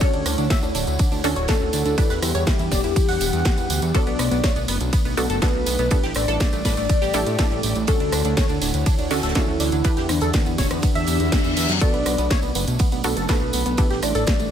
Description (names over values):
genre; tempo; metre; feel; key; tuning
progressive house; 122 BPM; 4/4; straight; E dorian; A4 = 440 Hz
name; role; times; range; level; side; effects
soft octave-layered synth lead; melody; 0.0-14.5 s; D4 to D5; -26 LUFS; left 2 dB; chorus, phaser, ping-pong delay
airy breathy pad; sustained chords; 0.0-14.5 s; D3 to F#5; -30 LUFS; equal; chorus, sidechain pumping
tight sequenced synth; arpeggios; 0.0-14.5 s; A3 to F#5; -29 LUFS; equal; chorus, sidechain pumping, dub echo
wide unison pluck; stabs; 0.0-14.5 s; B3 to B4; -28 LUFS; right 2 dB; sidechain pumping, dub echo
electronic kick drum; drums; 0.0-14.4 s; none; -21 LUFS; equal; none
house drum kit; drums; 0.0-14.5 s; hi-hat, ride cymbal, rim click, snare drum; -28 LUFS; right 1 dB; none
soft-mallet drum kit; drums; 0.0-14.4 s; hi-hat, snare drum; -37 LUFS; right 4 dB; none
tambourine; percussion; 0.0-14.5 s; none; -33 LUFS; right 6 dB; none
fat analog bass; bass; 0.1-14.5 s; D1 to A2; -25 LUFS; equal; sidechain pumping
reverse cymbal; sound effects; 11.2-11.8 s; none; -28 LUFS; left 6 dB; none
room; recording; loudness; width
digital ambience; none; -18 LUFS; side -9 dB against mid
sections
0.0-14.5 A section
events
reverse cymbal 11.2-11.8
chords
0.0 Dmaj7; 2.0 Em7; 3.9 Bm7; 5.9 A7sus4; 7.9 Dmaj7; 9.8 Em7; 11.8 Bm7; 13.8 A7sus4